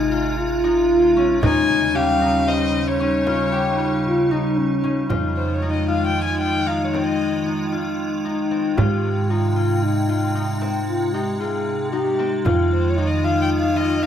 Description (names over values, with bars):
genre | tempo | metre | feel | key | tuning
contemporary instrumental, chamber music in an uneven meter | 114 BPM | 7/4 | straight | unclear | A4 = 436 Hz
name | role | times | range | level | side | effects
dark French horn | second line | 0.0-14.1 s | Db4 to Ab4 | -22 LUFS | equal | none
icy glass pad | sustained chords | 0.0-14.1 s | C3 to G5 | -26 LUFS | right 2 dB | chorus, built-in reverb
concert harp | arpeggios | 0.0-14.1 s | C4 to C5 | -25 LUFS | left 7 dB | none
upright bass | bass | 0.0-14.1 s | Ab1 to Ab2 | -25 LUFS | right 2 dB | none
warm violin | melody | 1.4-14.1 s | C5 to Ab5 | -24 LUFS | left 2 dB | none
frame drum | percussion | 1.4-12.7 s | none | -25 LUFS | right 1 dB | none
room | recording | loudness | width
light reverb | none | -18 LUFS | side -9 dB against mid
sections
0.0-5.1 A section; 5.1-14.1 B section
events
none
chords
0.0 Ab6; 1.4 Eb7; 5.1 Fm7; 8.8 Abmaj7; 12.5 Fm7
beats
0.38 0.91 | 1.43 1.96 2.48 3.00 3.53 4.05 4.58 | 5.10 5.63 6.15 6.68 7.20 7.73 8.25 | 8.78 9.30 9.83 10.35 10.88 11.40 11.93 | 12.45 12.97 13.50 14.02